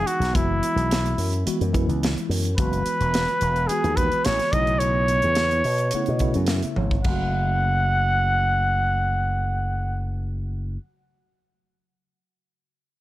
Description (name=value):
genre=electric jazz fusion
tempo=107 BPM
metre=4/4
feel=straight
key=F# minor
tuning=A4 = 439 Hz
part: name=warm trumpet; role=melody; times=0.0-10.1 s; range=E4 to F#5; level=-23 LUFS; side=equal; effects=plate reverb
part: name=tine electric piano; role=accompaniment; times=0.0-10.8 s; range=C#3 to A5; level=-30 LUFS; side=equal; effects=overdrive, fast stereo tremolo, plate reverb
part: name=slap bass with an envelope filter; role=bass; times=0.0-10.8 s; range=E1 to B2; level=-24 LUFS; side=equal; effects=none
part: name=crisp fusion drum kit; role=drums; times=0.1-7.2 s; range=crash cymbal, hi-hat, kick drum, snare drum, toms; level=-27 LUFS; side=equal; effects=none
room=light reverb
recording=none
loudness=-20 LUFS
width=side -15 dB against mid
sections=0.0-7.1 A section; 7.1-9.3 B section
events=tine electric piano fill 5.4-7.1; drum fill 6.8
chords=0.0 F#9sus4; 4.5 B9sus4; 7.1 F#m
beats=| 0.34 0.90 1.45 2.01 | 2.57 3.13 3.69 4.25 | 4.81 5.37 5.93 6.50 | 7.06 7.62 8.18 8.74